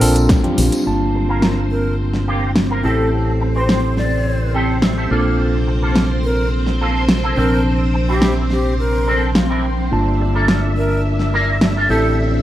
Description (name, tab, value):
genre	nu-disco, nu disco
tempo	106 BPM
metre	4/4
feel	straight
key	G dorian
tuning	A4 = 440 Hz
part	breathy hollow jazz flute	melody	0.0-12.1 s	G4 to D5	-25 LUFS	left 1 dB	tape echo
part	mellow tine electric piano	accompaniment	0.0-12.4 s	F3 to A5	-22 LUFS	equal	none
part	fingered electric bass with an envelope filter	bass	0.0-12.4 s	G1 to Bb1	-19 LUFS	equal	tube saturation, sidechain pumping
part	pop drum kit	drums	0.0-11.7 s	hi-hat, snare drum	-20 LUFS	equal	overdrive
part	tambourine and congas	percussion	0.0-0.8 s	none	-26 LUFS	left 3 dB	none
part	string machine, full ensemble	sustained chords	0.9-12.4 s	C4 to E5	-24 LUFS	equal	ensemble chorus, sidechain pumping
part	electric guitar with an envelope filter	riff	1.1-12.4 s	Bb3 to G5	-23 LUFS	right 1 dB	ensemble chorus, low-pass filter
room	moderate plate reverb, RT60 2.9 s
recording	dark, warm production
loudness	-14 LUFS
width	side -13 dB against mid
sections	0.9-12.4 A section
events	band accent 0.3; clean electric guitar fill 4.3-5.4, 9.1-9.9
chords	0.0 Bbmaj9; 0.9 Gm9; 2.8 Am7; 5.1 Bbmaj9; 9.9 Gm9; 11.9 Am7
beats	0.30 | 0.86 1.43 2.00 2.56 | 3.13 3.69 4.26 4.83 | 5.39 5.96 6.53 7.09 | 7.66 8.22 8.79 9.36 | 9.92 10.49 11.05 11.62 | 12.19